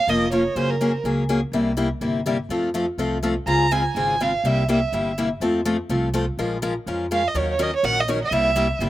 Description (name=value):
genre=acoustic string swing (jazz manouche)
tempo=247 BPM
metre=4/4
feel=swing 57% on 8ths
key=Bb minor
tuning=A4 = 439 Hz
part: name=warm violin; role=melody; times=0.0-1.0, 3.5-8.8 s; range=Bb4 to Bb5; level=-22 LUFS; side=right 4 dB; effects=slapback echo
part: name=picked acoustic archtop guitar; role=accompaniment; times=0.1-8.9 s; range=C3 to Bb4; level=-22 LUFS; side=left 2 dB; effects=slapback echo
part: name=upright bass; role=bass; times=0.1-8.9 s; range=F1 to F2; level=-27 LUFS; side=right 1 dB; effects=none
room=little or no reverb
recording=recorded outdoors, with no room sound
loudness=-20 LUFS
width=side -14 dB against mid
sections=0.0-7.4 A section; 7.4-8.9 B section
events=none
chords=0.0 Bbm; 0.6 Gbadd9; 1.5 C7; 2.5 F; 3.5 Dbmaj7; 4.4 C7; 5.4 F; 6.4 Bbm7; 7.4 Ebm7; 8.3 C7